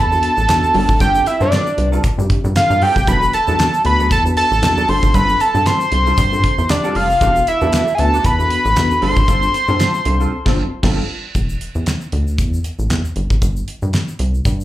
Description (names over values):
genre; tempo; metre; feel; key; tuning
early-eighties boogie funk; 116 BPM; 4/4; swing 56% on 16ths; E phrygian; A4 = 439 Hz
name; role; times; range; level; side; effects
fat analog lead; melody; 0.0-10.8 s; D5 to C6; -16 LUFS; equal; slapback echo
rubbery square bass; bass; 0.0-14.6 s; E1 to G2; -18 LUFS; equal; none
mellow tine electric piano; accompaniment; 0.1-11.0 s; B3 to C5; -24 LUFS; left 2 dB; medium stereo tremolo, slapback echo
mellow electric guitar; riff; 0.1-11.0 s; F#3 to A4; -25 LUFS; right 4 dB; ensemble chorus, slapback echo
egg shaker; percussion; 0.1-14.6 s; none; -38 LUFS; left 4 dB; none
damped 70s drum kit; drums; 0.2-14.6 s; crash cymbal, handclaps, hi-hat, kick drum, snare drum; -19 LUFS; equal; none
room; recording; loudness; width
light reverb; live gig heard through the venue's PA, club reverb; -13 LUFS; side -14 dB against mid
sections
0.0-11.3 A section; 11.3-14.6 B section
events
band accent 10.3-11.3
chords
0.0 E9sus4; 0.7 G9sus4; 3.1 E9sus4; 4.9 G9sus4; 7.2 E9sus4; 9.0 G9sus4; 11.3 E7(no3); 13.2 Gsus4